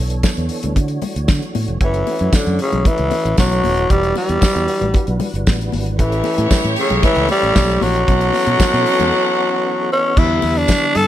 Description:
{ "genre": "disco", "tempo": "115 BPM", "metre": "4/4", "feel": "straight", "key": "E dorian", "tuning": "A4 = 437 Hz", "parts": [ { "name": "percussive tonewheel organ", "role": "sustained chords", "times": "0.0-11.1 s", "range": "D3 to C#5", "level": "-26 LUFS", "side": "equal", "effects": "chorus vibrato, slow rotary speaker" }, { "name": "fingered electric bass", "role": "bass", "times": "0.0-11.1 s", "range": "D#1 to D3", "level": "-20 LUFS", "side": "equal", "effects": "none" }, { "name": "damped 70s drum kit", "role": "drums", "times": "0.1-11.1 s", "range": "crash cymbal, hi-hat, kick drum, snare drum", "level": "-18 LUFS", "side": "equal", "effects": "none" }, { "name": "congas", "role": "percussion", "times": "0.2-10.8 s", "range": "none", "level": "-28 LUFS", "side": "left 6 dB", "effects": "none" }, { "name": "tambourine", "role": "percussion", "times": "0.2-10.8 s", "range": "none", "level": "-30 LUFS", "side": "right 7 dB", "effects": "none" }, { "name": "growling tenor saxophone", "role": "melody", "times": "1.8-11.1 s", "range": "C#3 to A4", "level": "-16 LUFS", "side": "left 1 dB", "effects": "none" }, { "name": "clear studio string section", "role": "second line", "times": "6.0-10.1 s", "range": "A3 to F#5", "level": "-23 LUFS", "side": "equal", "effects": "none" } ], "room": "light reverb", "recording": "none", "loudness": "-14 LUFS", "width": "side -12 dB against mid", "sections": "0.0-1.8 A section; 1.8-10.2 B section", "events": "break 9.1-10.2", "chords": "0.0 Bm11; 0.8 Dmaj9; 1.8 F#m7; 3.9 Em9; 6.0 A7; 8.1 B9sus4; 10.2 Em7" }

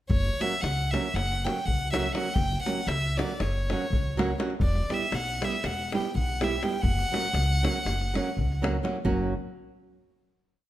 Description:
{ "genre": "balkan folk, Balkan wedding band", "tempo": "242 BPM (eighths)", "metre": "9/8", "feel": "straight", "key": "F# phrygian dominant", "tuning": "A4 = 440 Hz", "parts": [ { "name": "rich violin", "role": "melody", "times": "0.1-8.6 s", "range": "C#5 to G5", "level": "-31 LUFS", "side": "equal", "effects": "none" }, { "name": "upright bass", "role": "bass", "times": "0.1-9.3 s", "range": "E1 to C#2", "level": "-29 LUFS", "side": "equal", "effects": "none" }, { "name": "davul", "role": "percussion", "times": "0.1-9.3 s", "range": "none", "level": "-32 LUFS", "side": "left 2 dB", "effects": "none" }, { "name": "flamenco guitar", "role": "accompaniment", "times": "0.4-9.3 s", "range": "F#3 to G4", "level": "-31 LUFS", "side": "right 3 dB", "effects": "none" } ], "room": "light reverb", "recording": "none", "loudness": "-25 LUFS", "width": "side -14 dB against mid", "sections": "0.1-9.1 A section; 9.1-10.7 final chord", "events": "none", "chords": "0.1 F#; 4.6 Em; 6.8 F#" }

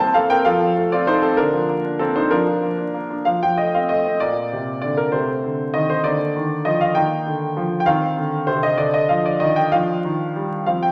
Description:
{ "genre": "classical-period piano sonatina", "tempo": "65 BPM (dotted quarters)", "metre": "6/8", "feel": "straight", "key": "Bb major", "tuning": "A4 = 440 Hz", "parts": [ { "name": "bright concert grand piano", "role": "solo", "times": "0.0-10.9 s", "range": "Bb2 to A5", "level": "-20 LUFS", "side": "equal", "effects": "none" } ], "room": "wet recital hall reverb, RT60 1.4 s", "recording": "vinyl crackle", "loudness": "-20 LUFS", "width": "mono", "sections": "0.0-4.2 A section; 4.2-10.9 B section", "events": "none", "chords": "0.5 F; 1.4 Bb/D; 2.3 Bb/F; 3.3 F; 4.2 Bb; 5.1 Cm69; 6.1 Bb/D; 7.9 F5; 8.8 Ebmaj9/D; 9.7 Ebmaj9" }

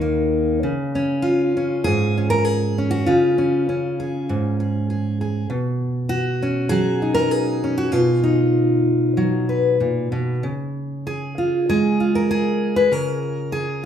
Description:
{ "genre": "folk, solo fingerstyle acoustic guitar", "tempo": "98 BPM", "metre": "4/4", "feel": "rubato", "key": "unclear", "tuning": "A4 = 441 Hz", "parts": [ { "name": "fingerpicked steel-string acoustic guitar", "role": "solo", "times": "0.0-13.9 s", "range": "Eb2 to B4", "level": "-18 LUFS", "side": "equal", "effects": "none" } ], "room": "moderate large studio reverb, RT60 0.8 s", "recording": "band playing live in one room", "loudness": "-18 LUFS", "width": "side -9 dB against mid", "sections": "0.6-13.9 A section", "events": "none", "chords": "0.0 Eb5; 0.6 Db; 5.5 Badd9; 10.4 Db" }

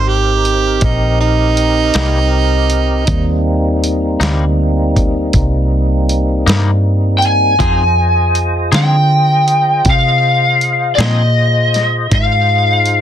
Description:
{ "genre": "slow blues", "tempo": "53 BPM (dotted quarters)", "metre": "12/8", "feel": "straight", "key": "C minor", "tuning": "A4 = 440 Hz", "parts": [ { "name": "lead guitar through a small cranked amp", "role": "melody", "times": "0.0-13.0 s", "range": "C5 to Ab5", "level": "-13 LUFS", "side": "left 1 dB", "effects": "overdrive" }, { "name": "warm harmonica", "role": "second line", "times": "0.0-3.4 s", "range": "Eb4 to C5", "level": "-16 LUFS", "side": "right 6 dB", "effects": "overdrive" }, { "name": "tonewheel organ", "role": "sustained chords", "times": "0.0-13.0 s", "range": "G3 to Eb5", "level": "-19 LUFS", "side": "equal", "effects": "slow rotary speaker, overdrive, chorus vibrato" }, { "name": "vintage muted fingered electric bass", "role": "bass", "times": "0.0-13.0 s", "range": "Ab1 to D3", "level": "-14 LUFS", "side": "equal", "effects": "none" }, { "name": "dusty soul sampler-style drum kit", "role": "drums", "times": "0.5-13.0 s", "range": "hi-hat, kick drum, snare drum", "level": "-16 LUFS", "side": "equal", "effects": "none" }, { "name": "twangy electric guitar", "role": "accompaniment", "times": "1.9-11.2 s", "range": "C3 to Ab4", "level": "-20 LUFS", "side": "left 6 dB", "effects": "harmonic tremolo" } ], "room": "light reverb", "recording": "dense, heavily limited modern master", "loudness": "-11 LUFS", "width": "side -10 dB against mid", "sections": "0.0-13.0 A section", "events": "none", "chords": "0.0 Cm7" }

